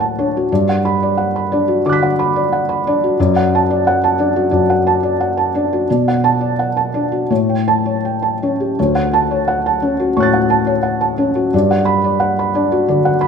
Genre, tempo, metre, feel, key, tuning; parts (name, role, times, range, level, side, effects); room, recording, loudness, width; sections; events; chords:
neoclassical minimalist piano; 88 BPM; 4/4; rubato; D major; A4 = 440 Hz
felt-muted upright piano; solo; 0.0-13.3 s; D2 to B6; -13 LUFS; equal
moderate scoring stage reverb, RT60 1.9 s; minimal, uncompressed stereo recording; -13 LUFS; side -6 dB against mid
0.0-8.8 A section; 8.8-13.3 A section
0.5 Gmaj7; 3.2 D/F#; 5.9 Bm7; 7.3 A7; 8.8 Dmaj7; 11.5 Gmaj7